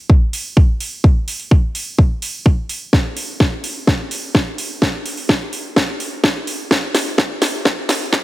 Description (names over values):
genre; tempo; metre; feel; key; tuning
EDM; 127 BPM; 4/4; straight; none; none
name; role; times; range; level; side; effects
electronic kick drum; drums; 0.1-8.2 s; none; -13 LUFS; equal; none
house drum kit; drums; 0.3-8.2 s; hi-hat, snare drum; -19 LUFS; equal; none
room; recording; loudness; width
light reverb; high-pass filter; -15 LUFS; side -16 dB against mid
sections
0.0-8.2 A section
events
build-up 0.0-8.2; filter sweep 0.0-8.2; drum fill 2.9-8.2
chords
none